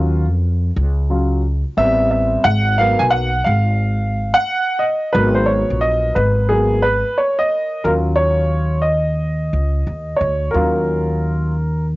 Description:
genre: hip hop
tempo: 89 BPM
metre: 4/4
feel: swing 64% on 16ths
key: Eb minor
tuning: A4 = 440 Hz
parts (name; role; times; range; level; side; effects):
- warm baby grand piano; accompaniment; 0.0-11.8 s; Gb3 to Ab5; -17 LUFS; equal; cassette tape, plate reverb
- upright bass; bass; 0.0-12.0 s; Ab1 to F2; -18 LUFS; equal; transformer saturation
room: moderate booth ambience, RT60 0.2 s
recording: home recording on cassette, nothing above 7.6 kHz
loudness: -15 LUFS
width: side -19 dB against mid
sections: 0.0-7.8 A section; 7.8-12.0 B section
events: grand piano solo 0.0-7.8, 7.8-12.0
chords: 0.0 Ebm9; 1.8 Am7; 2.5 Abm7; 7.8 Ebm9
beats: 0.43 1.11 1.78 | 2.45 3.13 3.80 4.48 | 5.15 5.83 6.50 7.17 | 7.85 8.52 9.20 9.87 | 10.54 11.22 11.89

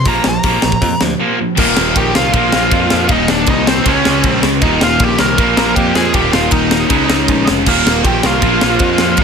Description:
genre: punk rock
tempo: 158 BPM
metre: 4/4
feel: straight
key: Eb major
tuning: A4 = 440 Hz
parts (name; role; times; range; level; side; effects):
- smooth overdriven lead guitar; melody; 0.0-9.2 s; Bb3 to Bb5; -17 LUFS; equal; none
- distorted electric guitar; riff; 0.0-9.2 s; Eb2 to Db4; -19 LUFS; left 13 dB; distortion
- distorted electric guitar; riff; 0.0-9.2 s; Eb2 to Db4; -18 LUFS; right 12 dB; distortion
- modern bright picked electric bass; bass; 0.1-9.2 s; Eb1 to F2; -20 LUFS; equal; none
- tight metal drum kit; drums; 0.1-9.2 s; crash cymbal, hi-hat, kick drum, ride cymbal, snare drum; -16 LUFS; left 1 dB; none
- crunchy overdriven guitar; riff; 1.6-9.2 s; Eb2 to Db4; -19 LUFS; left 1 dB; none
room: light reverb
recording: none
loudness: -10 LUFS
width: side -6 dB against mid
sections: 0.0-1.6 A section; 1.6-9.2 B section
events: lead electric guitar solo 0.0-1.6; break 1.2-1.6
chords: 0.1 Bb5; 1.6 Eb; 2.3 Bb5; 3.1 Eb5; 3.9 Db5; 4.6 Eb; 5.4 Bb5; 6.1 Eb; 6.9 Db; 7.7 Eb; 8.4 Bb5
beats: | 0.05 0.43 0.82 1.20 | 1.58 1.96 2.34 2.72 | 3.10 3.48 3.86 4.25 | 4.62 5.00 5.38 5.77 | 6.15 6.53 6.91 7.29 | 7.67 8.05 8.43 8.81 | 9.19

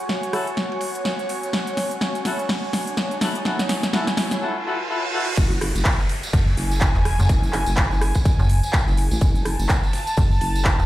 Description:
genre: bass house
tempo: 125 BPM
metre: 4/4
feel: swing 58% on 16ths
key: F# minor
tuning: A4 = 440 Hz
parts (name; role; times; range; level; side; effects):
- riser, reverse cymbal and downlifter; sound effects; 0.7-9.2 s; none; -32 LUFS; right 1 dB; none
- airy breathy pad; texture; 0.0-10.9 s; F#4 to A5; -28 LUFS; equal; chorus, sidechain pumping
- big-room dance drum kit; drums; 0.1-10.8 s; crash cymbal, handclaps, hi-hat, rim click, snare drum; -25 LUFS; equal; overdrive, studio reverb
- vintage drum kit; drums; 0.1-10.9 s; hi-hat, ride cymbal, snare drum; -38 LUFS; right 1 dB; high-pass filter on cymbals, studio reverb, high-pass filter on hats, high-pass filter on snare, high-pass filter on room
- warm horn section; stabs; 0.3-5.3 s; E4 to A4; -28 LUFS; left 2 dB; sidechain pumping, digital delay
- vowel-sweep wobble bass; bass; 5.4-10.8 s; F#1 to A1; -23 LUFS; equal; chorus, sidechain pumping
- electronic kick drum; drums; 5.4-10.8 s; none; -20 LUFS; equal; overdrive, studio reverb
- tambourine; percussion; 5.4-10.9 s; none; -35 LUFS; right 2 dB; none
- metallic FM bass; bass; 6.3-10.9 s; E1 to F#1; -19 LUFS; equal; tube saturation, sidechain pumping
room: light reverb, studio ambience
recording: played on a big sound system in a bare room, stone room reverb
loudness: -19 LUFS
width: side -15 dB against mid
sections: 0.0-5.4 A section; 5.4-10.9 B section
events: build-up 0.0-5.4; drum fill 0.0-4.4; riser 0.7-5.4; reverse cymbal 4.4-5.4; drop 5.4-10.9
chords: 0.0 F#m7; 5.4 F#m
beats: 0.09 0.57 1.05 | 1.53 2.01 2.49 2.97 | 3.45 3.93 4.41 4.89 | 5.37 5.85 6.33 6.81 | 7.29 7.77 8.25 8.73 | 9.21 9.69 10.17 10.65

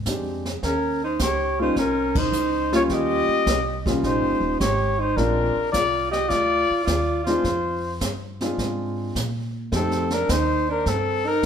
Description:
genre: jazz, small-group swing and bop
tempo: 106 BPM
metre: 4/4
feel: swing 69% on 8ths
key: unclear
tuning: A4 = 437 Hz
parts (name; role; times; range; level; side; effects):
- upright bass; bass; 0.0-11.5 s; Eb1 to Bb2; -28 LUFS; right 1 dB; none
- warm concert grand piano; accompaniment; 0.1-10.1 s; G3 to G4; -26 LUFS; left 1 dB; none
- jazz brush drum kit; drums; 0.1-11.5 s; brushed snare drum, hi-hat, kick drum, ride cymbal, snare drum; -28 LUFS; right 1 dB; none
- breathy trumpet; melody; 0.6-11.5 s; A4 to Eb5; -24 LUFS; left 3 dB; none
- clear alto saxophone; second line; 0.6-11.5 s; C4 to G4; -26 LUFS; right 3 dB; none
room: wet large studio reverb, RT60 1.3 s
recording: band playing live in one room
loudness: -20 LUFS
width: side -8 dB against mid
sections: 0.0-11.5 A section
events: band accent 2.0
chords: 0.0 Bb7 (rootless); 0.6 Eb7; 5.2 Bb7; 9.7 F7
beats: 0.06 | 0.63 1.19 1.76 2.33 | 2.90 3.46 4.03 4.60 | 5.17 5.74 6.31 6.88 | 7.44 8.01 8.58 9.15 | 9.72 10.29 10.86 11.43

